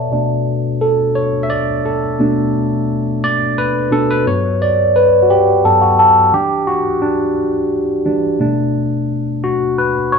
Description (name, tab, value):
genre	R&B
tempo	58 BPM (dotted quarters)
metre	6/8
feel	straight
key	B minor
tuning	A4 = 441 Hz
part	barky tine electric piano	solo	0.0-10.2 s	G2 to E5	-13 LUFS	equal	phaser
room	moderate plate reverb, RT60 2.7 s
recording	small room ambience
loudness	-13 LUFS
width	side -5 dB against mid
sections	0.1-10.2 A section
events	tine electric piano solo 0.1-10.2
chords	0.1 Bm7; 4.2 Gmaj7; 6.3 Em7; 8.4 Bm7